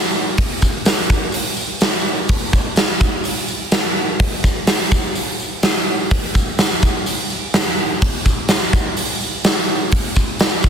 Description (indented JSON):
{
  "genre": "rock",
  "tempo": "126 BPM",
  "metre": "4/4",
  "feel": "straight",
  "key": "none",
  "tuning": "none",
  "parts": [
    { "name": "tambourine", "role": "percussion", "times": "0.1-10.7 s", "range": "none", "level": "-32 LUFS", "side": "left 5 dB", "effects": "none" },
    { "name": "big rock drum kit", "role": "drums", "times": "0.4-10.7 s", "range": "hi-hat, kick drum, snare drum", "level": "-15 LUFS", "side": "equal", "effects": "soft clipping on kick" }
  ],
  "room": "light reverb, small room ambience",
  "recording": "dense, heavily limited modern master",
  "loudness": "-15 LUFS",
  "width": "side -7 dB against mid",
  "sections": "0.0-10.7 A section",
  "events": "none",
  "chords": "none"
}